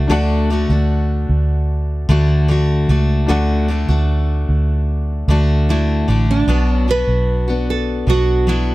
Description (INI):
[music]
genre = acoustic pop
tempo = 75 BPM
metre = 4/4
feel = straight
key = D major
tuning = A4 = 440 Hz
[part]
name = clear upright piano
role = accompaniment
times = 0.0-6.5 s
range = D4 to F#5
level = -27 LUFS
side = left 2 dB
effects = plate reverb
[part]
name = picked steel-string acoustic guitar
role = accompaniment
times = 0.0-8.7 s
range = B2 to F#4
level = -20 LUFS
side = left 2 dB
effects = plate reverb
[part]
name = vintage muted fingered electric bass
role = bass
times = 0.0-8.7 s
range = A1 to D2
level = -16 LUFS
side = equal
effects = none
[part]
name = nylon-string guitar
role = melody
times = 5.7-8.7 s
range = D4 to B4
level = -21 LUFS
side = right 4 dB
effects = plate reverb
[sound]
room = little or no reverb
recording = none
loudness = -14 LUFS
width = side -18 dB against mid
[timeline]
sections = 0.1-6.5 A section; 6.5-8.7 B section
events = none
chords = 0.1 D; 6.5 Bm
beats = | 0.10 0.90 1.69 2.49 | 3.29 4.08 4.88 5.68 | 6.48 7.28 8.08